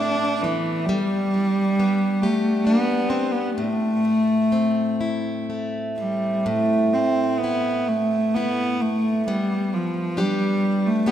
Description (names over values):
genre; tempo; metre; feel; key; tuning
celtic folk, Celtic slow air; 61-69 BPM; 3/4; rubato; A minor; A4 = 440 Hz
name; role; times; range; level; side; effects
rich cello; melody; 0.0-11.1 s; E3 to D4; -21 LUFS; equal; none
picked plugged-in steel-string acoustic guitar; accompaniment; 0.0-11.1 s; A2 to B4; -25 LUFS; equal; none
room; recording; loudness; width
wet church reverb, RT60 2.6 s; minimal, uncompressed stereo recording; -20 LUFS; side -10 dB against mid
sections
0.0-6.5 A section; 6.5-11.1 B section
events
none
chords
0.0 Asus2; 0.9 G; 3.6 Am; 6.5 A5; 9.3 G